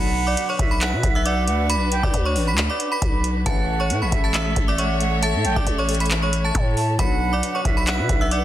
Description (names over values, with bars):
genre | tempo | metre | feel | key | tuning
hip hop, trap | 136 BPM | 4/4 | half-time | B minor | A4 = 440 Hz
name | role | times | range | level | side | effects
metallic FM bell | melody | 0.0-8.4 s | C#5 to B6 | -25 LUFS | right 1 dB | chorus, tape echo
concert flute | second line | 0.0-8.4 s | E5 to A5 | -28 LUFS | right 7 dB | tape echo
dark chamber string section | sustained chords | 0.0-8.4 s | A3 to E5 | -29 LUFS | left 1 dB | none
warm brass ensemble | stabs | 0.0-0.3, 3.5-3.8, 7.0-7.3 s | A2 to F#3 | -34 LUFS | left 6 dB | tape echo
growling 808-style bass | bass | 0.0-8.4 s | A1 to B2 | -23 LUFS | equal | none
booming analog drum machine | drums | 0.4-8.4 s | handclaps, hi-hat, kick drum | -23 LUFS | equal | none
room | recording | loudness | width
little or no reverb | dense, heavily limited modern master | -18 LUFS | side -12 dB against mid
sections
0.0-8.4 A section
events
none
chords
0.0 Bm; 3.5 A; 7.0 Bm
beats
0.37 0.81 1.25 | 1.70 2.14 2.58 3.02 | 3.46 3.90 4.34 4.78 | 5.22 5.67 6.11 6.55 | 6.99 7.43 7.87 8.31